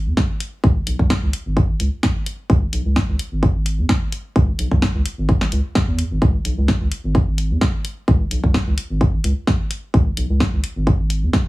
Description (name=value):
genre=minimal techno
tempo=129 BPM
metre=4/4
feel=swing 54% on 16ths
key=C# minor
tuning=A4 = 440 Hz
part: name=round analog bass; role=bass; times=0.0-11.3 s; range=G#1 to E2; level=-20 LUFS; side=equal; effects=sidechain pumping
part: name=electronic kick drum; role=drums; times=0.2-11.4 s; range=none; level=-18 LUFS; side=equal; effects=none
part: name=house drum kit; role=drums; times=0.2-11.4 s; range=hi-hat, snare drum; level=-23 LUFS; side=equal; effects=none
room=little or no reverb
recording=heavily compressed radio sound, multiband compression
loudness=-17 LUFS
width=side -19 dB against mid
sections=0.0-11.5 A section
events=none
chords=none